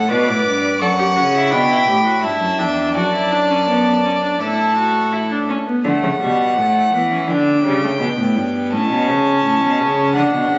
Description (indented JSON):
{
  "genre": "classical, baroque-style fugue for string quartet",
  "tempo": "84 BPM",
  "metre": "4/4",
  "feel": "straight",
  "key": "D major",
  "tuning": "A4 = 439 Hz",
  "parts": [
    { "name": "warm violin", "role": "melody", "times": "0.0-10.6 s", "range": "F#5 to D6", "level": "-22 LUFS", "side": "equal", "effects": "none" },
    { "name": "rich viola", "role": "accompaniment", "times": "0.0-10.6 s", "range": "G3 to B4", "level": "-23 LUFS", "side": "equal", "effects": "none" },
    { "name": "rich cello", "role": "bass", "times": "0.0-10.6 s", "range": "E2 to E3", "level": "-22 LUFS", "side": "equal", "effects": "none" },
    { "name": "warm violin", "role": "second line", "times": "0.1-5.5 s", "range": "A4 to G5", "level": "-22 LUFS", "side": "equal", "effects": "none" }
  ],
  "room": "wet recital hall reverb, RT60 1.5 s",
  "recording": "recorded on a phone in the room, studio ambience, vinyl crackle, nothing above 7.9 kHz",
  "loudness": "-17 LUFS",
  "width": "mono",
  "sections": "0.0-5.9 A section; 5.9-10.6 B section",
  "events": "none",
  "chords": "0.1 Bm; 1.5 Em7; 3.0 D/F#; 4.4 A5; 5.9 D (rootless); 7.3 Gadd9; 8.7 A",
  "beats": "| 0.11 0.81 1.52 2.24 | 2.96 3.69 4.41 5.14 | 5.86 6.58 7.29 8.01 | 8.72 9.44 10.15"
}